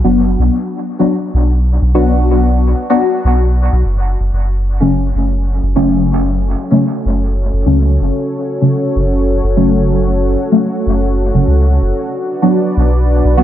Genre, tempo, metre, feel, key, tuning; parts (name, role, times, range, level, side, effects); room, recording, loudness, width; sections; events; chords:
dub techno; 126 BPM; 4/4; swing 55% on 16ths; F# minor; A4 = 440 Hz
deep mellow chord stab; stabs; 0.0-13.4 s; C#3 to F#4; -14 LUFS; left 1 dB; chorus, phaser, dub echo
soft dub sub bass; bass; 0.0-13.4 s; F#1 to C#2; -13 LUFS; equal
dark analog pad; sustained chords; 5.3-13.4 s; C#4 to D5; -19 LUFS; equal; chorus
light reverb, digital ambience; -11 LUFS; side -11 dB against mid
0.0-13.4 A section
0.0 Bm; 4.4 F#m; 12.1 Bm